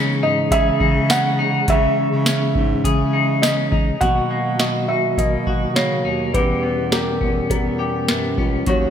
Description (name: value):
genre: dream pop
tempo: 103 BPM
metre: 4/4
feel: straight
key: B major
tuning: A4 = 440 Hz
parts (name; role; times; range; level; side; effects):
- mellow tonewheel organ; sustained chords; 0.0-8.9 s; B2 to G#4; -23 LUFS; right 1 dB; fast rotary speaker
- clean electric guitar; arpeggios; 0.0-8.9 s; B2 to G#4; -23 LUFS; left 5 dB; wide subtle chorus, ping-pong delay
- warm bass clarinet; bass; 0.0-8.9 s; C#2 to C#3; -26 LUFS; right 1 dB; none
- felt-muted upright piano; melody; 0.2-8.9 s; A#4 to F#5; -22 LUFS; right 1 dB; ping-pong delay
- booming analog drum machine; drums; 0.5-8.9 s; hi-hat, kick drum, snare drum, tambourine; -21 LUFS; equal; gated reverb
room: moderate lush hall reverb, RT60 1.8 s, digital ambience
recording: bright 1980s-style digital production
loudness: -16 LUFS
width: side -8 dB against mid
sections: 0.0-4.0 A section; 4.0-8.9 B section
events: none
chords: 0.0 C#madd9; 4.0 Bmaj7; 6.3 Em6